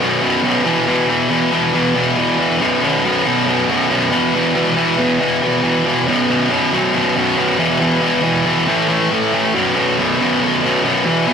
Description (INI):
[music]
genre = rock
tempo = 138 BPM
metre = 4/4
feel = straight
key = unclear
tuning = A4 = 440 Hz
[part]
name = high-gain distorted guitar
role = solo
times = 0.0-11.3 s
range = B1 to A3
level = -13 LUFS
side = equal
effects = distortion
[sound]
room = wet studio reverb, RT60 0.6 s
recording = rough rehearsal-room recording, warm saturation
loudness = -13 LUFS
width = side -6 dB against mid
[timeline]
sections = 0.0-9.5 A section; 9.5-11.3 B section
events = none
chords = 0.0 B5; 0.7 E5; 2.6 B5; 4.1 E5; 6.1 B5; 7.6 E5; 8.7 A5; 9.5 B5